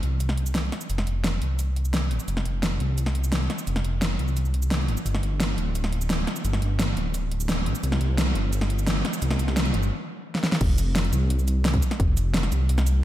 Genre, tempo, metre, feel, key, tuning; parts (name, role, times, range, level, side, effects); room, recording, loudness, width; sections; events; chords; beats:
liquid drum and bass; 173 BPM; 4/4; straight; A4 = 440 Hz
dark detuned saw bass; bass; 0.0-13.0 s; D1 to C2; -24 LUFS; equal
pop drum kit; drums; 0.0-12.9 s; crash cymbal, hi-hat, shaker, snare drum; -27 LUFS; equal; small room ambience
electronic kick drum; drums; 10.6-12.1 s; -23 LUFS; equal; small room ambience
moderate lush hall reverb, RT60 1.9 s; dreamy mix soaked in reverb; -22 LUFS; side -13 dB against mid
0.0-10.6 A section; 10.6-13.0 B section
build-up 0.0-10.6; stop 9.9-10.6; drum fill 10.3; drop 10.6-13.0
0.20 0.55 | 0.90 1.25 1.59 1.94 | 2.29 2.63 2.98 3.33 | 3.67 4.02 4.37 4.71 | 5.06 5.41 5.75 6.10 | 6.45 6.79 7.14 7.49 | 7.83 8.18 8.53 8.88 | 9.22 9.57 9.92 10.26 | 10.61 10.96 11.30 11.65 | 12.00 12.34 12.69 13.04